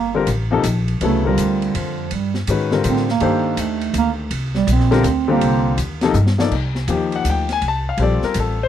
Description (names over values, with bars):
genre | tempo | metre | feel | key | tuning
modal jazz | 163 BPM | 3/4 | swing 65% on 8ths | C dorian | A4 = 440 Hz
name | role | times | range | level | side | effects
mellow bass clarinet | second line | 0.0-5.8 s | F3 to C4 | -20 LUFS | right 9 dB | none
upright bass | bass | 0.0-8.7 s | G1 to A2 | -20 LUFS | equal | none
warm grand piano | accompaniment | 0.1-8.7 s | C3 to A5 | -20 LUFS | left 6 dB | none
open jazz drum kit | drums | 0.3-8.5 s | crash cymbal, hi-hat, kick drum, ride cymbal, snare drum, toms | -28 LUFS | equal | none
room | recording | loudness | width
little or no reverb | dry, close 1970s-style studio recording | -16 LUFS | side -10 dB against mid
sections
0.0-6.5 A section; 6.5-8.7 A section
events
bass clarinet solo 0.0-6.5; drum fill 6.2-6.5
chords
0.0 Cm11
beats
0.28 0.64 | 1.01 1.38 1.74 | 2.11 2.48 2.85 | 3.21 3.58 3.95 | 4.31 4.68 5.05 | 5.42 5.78 6.15 | 6.52 6.89 7.25 | 7.62 7.99 8.36